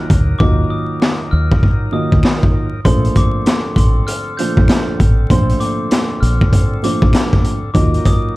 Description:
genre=hip hop, boom-bap hip-hop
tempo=98 BPM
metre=4/4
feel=swing 63% on 16ths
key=Bb major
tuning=A4 = 439 Hz
part: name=dark upright piano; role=accompaniment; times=0.0-8.4 s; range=Bb2 to Eb5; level=-21 LUFS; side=right 2 dB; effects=cassette tape, high-pass filter, low-pass filter
part: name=bright tonewheel organ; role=sustained chords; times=0.0-8.4 s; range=D3 to Bb4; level=-30 LUFS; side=left 1 dB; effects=slow rotary speaker, high-pass filter, low-pass filter
part: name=deep dub fingered electric bass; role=bass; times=0.1-8.0 s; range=A1 to Eb2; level=-15 LUFS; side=equal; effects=none
part: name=raw garage drum kit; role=drums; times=0.1-8.2 s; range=hi-hat, kick drum, snare drum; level=-14 LUFS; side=equal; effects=none
part: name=glockenspiel with soft plastic mallets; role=melody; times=0.4-8.4 s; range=C6 to G6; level=-25 LUFS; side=left 2 dB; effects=high-pass filter, low-pass filter
part: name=finger snaps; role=percussion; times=1.0-7.3 s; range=none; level=-33 LUFS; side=left 2 dB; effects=none
room=light reverb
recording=dark, warm production, vinyl crackle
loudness=-12 LUFS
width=side -19 dB against mid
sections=0.0-8.4 A section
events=hi-hats muted 0.4-2.8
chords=0.0 Ebmadd9; 2.8 Bbmaj9; 7.7 Ebmadd9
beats=| 0.40 1.01 1.62 2.24 | 2.85 3.46 4.07 4.69 | 5.30 5.91 6.52 7.13 | 7.75 8.36

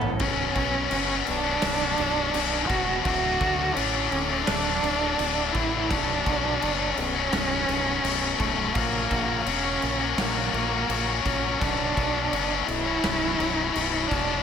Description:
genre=post-rock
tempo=84 BPM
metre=4/4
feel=straight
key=B minor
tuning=A4 = 440 Hz
part: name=dark cello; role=melody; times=0.0-14.4 s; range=A3 to F#4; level=-28 LUFS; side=right 3 dB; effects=analog delay
part: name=rich symphonic string section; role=sustained chords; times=0.0-14.4 s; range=A4 to D6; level=-38 LUFS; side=right 1 dB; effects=none
part: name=overdriven electric guitar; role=riff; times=0.0-14.4 s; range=B1 to F#4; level=-26 LUFS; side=left 8 dB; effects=none
part: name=growling fingered electric bass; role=bass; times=0.0-14.4 s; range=B0 to D2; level=-32 LUFS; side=right 1 dB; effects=overdrive
part: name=big rock drum kit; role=drums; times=0.0-14.3 s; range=crash cymbal, kick drum, snare drum, toms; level=-30 LUFS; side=equal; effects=none
room=light reverb, small room ambience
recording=none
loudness=-22 LUFS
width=side -7 dB against mid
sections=0.2-14.4 A section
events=none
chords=0.2 Bmadd9; 3.1 D; 5.9 Bmadd9; 8.8 F#; 11.6 Bmadd9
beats=| 0.20 0.91 1.63 2.34 | 3.06 3.77 4.49 5.20 | 5.91 6.63 7.34 8.05 | 8.77 9.48 10.19 10.90 | 11.62 12.33 13.04 13.76

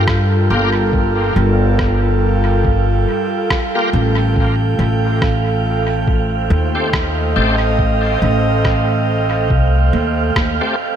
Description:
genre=ambient dub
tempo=70 BPM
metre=4/4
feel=swing 57% on 16ths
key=unclear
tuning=A4 = 440 Hz
part: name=airy breathy pad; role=sustained chords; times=0.0-11.0 s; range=G3 to G5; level=-19 LUFS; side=right 1 dB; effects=chorus
part: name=bright tonewheel organ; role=stabs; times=0.0-10.8 s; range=A3 to G4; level=-24 LUFS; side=left 2 dB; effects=overdrive, chorus vibrato, slow rotary speaker, dub echo
part: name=upright bass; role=bass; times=0.0-10.6 s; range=G1 to G2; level=-16 LUFS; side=equal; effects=none
part: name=wind-like tuned noise texture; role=texture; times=0.0-11.0 s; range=F5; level=-25 LUFS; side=right 10 dB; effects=built-in reverb
part: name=electronic kick drum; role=drums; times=0.1-10.6 s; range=none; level=-19 LUFS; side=equal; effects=none
part: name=electronic rim click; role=drums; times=0.1-10.6 s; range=none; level=-26 LUFS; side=equal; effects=dub echo
room=moderate plate reverb, RT60 3.2 s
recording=dreamy mix soaked in reverb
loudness=-13 LUFS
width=side -9 dB against mid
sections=0.0-11.0 A section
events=none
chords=0.0 Gm7; 4.4 Am7b5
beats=0.08 | 0.94 1.79 2.65 3.51 | 4.36 5.22 6.08 6.93 | 7.79 8.65 9.51 10.36

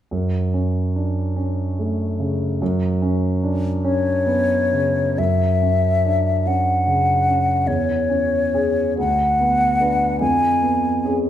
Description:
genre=classical, romantic duo for flute and grand piano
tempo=48 BPM (dotted quarters)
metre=6/8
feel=uneven beats, rubato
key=F# minor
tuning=A4 = 439 Hz
part: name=warm concert grand piano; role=accompaniment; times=0.1-11.3 s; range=D2 to B4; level=-20 LUFS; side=right 1 dB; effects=none
part: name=mellow hollow silver concert flute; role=melody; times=3.8-11.2 s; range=C#5 to G#5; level=-19 LUFS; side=left 2 dB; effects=none
room=wet recital hall reverb, RT60 1.4 s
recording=minimal, uncompressed stereo recording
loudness=-17 LUFS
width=side -11 dB against mid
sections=0.1-5.2 A section; 5.2-11.3 B section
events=none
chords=0.1 F#m; 2.6 F#sus4; 5.2 F#5; 7.7 C#m/E; 9.0 Bm/D; 10.2 C#7/E#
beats=| 0.11 1.36 | 2.61 3.84 | 5.18 6.46 | 7.67 8.97 | 10.21

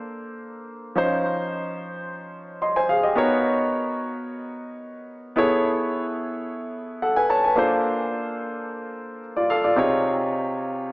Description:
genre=amapiano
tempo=109 BPM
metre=4/4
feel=straight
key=unclear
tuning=A4 = 440 Hz
part: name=warm grand piano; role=solo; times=0.0-10.9 s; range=B#2 to B#5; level=-22 LUFS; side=equal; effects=diffuse ambient delay
room=wet lush hall reverb, RT60 1.9 s, small room reverb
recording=dreamy mix soaked in reverb, small speaker sound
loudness=-21 LUFS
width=side -22 dB against mid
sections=0.0-3.2 A section; 3.2-10.9 B section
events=drop 3.2-10.9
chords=0.0 A#maj9; 1.0 C#maj9; 3.2 Bmaj9; 5.4 Amaj9; 7.6 A#maj9; 9.8 C#maj9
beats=0.41 | 0.96 1.51 2.06 2.61 | 3.16 3.71 4.26 4.81 | 5.36 5.91 6.46 7.01 | 7.57 8.12 8.67 9.22 | 9.77 10.32 10.87

